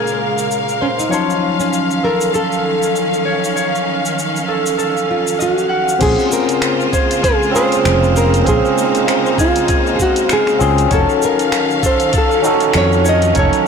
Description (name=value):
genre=sunset chillout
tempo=98 BPM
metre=4/4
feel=swing 57% on 16ths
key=Bb minor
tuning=A4 = 442 Hz
part: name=nylon-string guitar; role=melody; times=0.0-13.7 s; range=Db4 to Eb5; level=-18 LUFS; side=equal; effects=digital delay
part: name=barky tine electric piano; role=accompaniment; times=0.0-13.7 s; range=Bb2 to C6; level=-19 LUFS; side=moving between left 6 dB and right 9 dB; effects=overdrive, auto-pan, digital delay
part: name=bright studio string section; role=sustained chords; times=0.0-13.7 s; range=Db3 to F5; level=-21 LUFS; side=left 1 dB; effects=none
part: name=concert harp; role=arpeggios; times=0.0-13.7 s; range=Ab4 to Gb5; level=-22 LUFS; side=right 1 dB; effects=digital delay
part: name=wind-like tuned noise texture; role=texture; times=0.0-13.7 s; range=F5 to F6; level=-26 LUFS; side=equal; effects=built-in reverb
part: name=deep house drum kit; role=drums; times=0.1-13.6 s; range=cabasa, crash cymbal, finger snaps, hi-hat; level=-24 LUFS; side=left 1 dB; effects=small room ambience, soft clipping on snare
part: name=sustaining fretless electric bass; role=bass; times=6.0-13.5 s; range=F1 to F2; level=-16 LUFS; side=equal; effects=none
part: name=electronic kick drum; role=drums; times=6.0-13.5 s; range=none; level=-19 LUFS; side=equal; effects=small room ambience
room=light reverb, digital ambience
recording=blown-out, overdriven recording, overdrive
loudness=-13 LUFS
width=side -6 dB against mid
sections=0.0-6.0 A section; 6.0-13.7 B section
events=filter sweep on harp 0.0-6.0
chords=0.0 Bbm9; 1.1 F7b9b13; 6.0 Bbm9; 10.9 F7b9b13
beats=0.51 | 1.12 1.73 2.34 2.96 | 3.57 4.18 4.79 5.41 | 6.02 6.63 7.24 7.85 | 8.47 9.08 9.69 10.30 | 10.92 11.53 12.14 12.75 | 13.37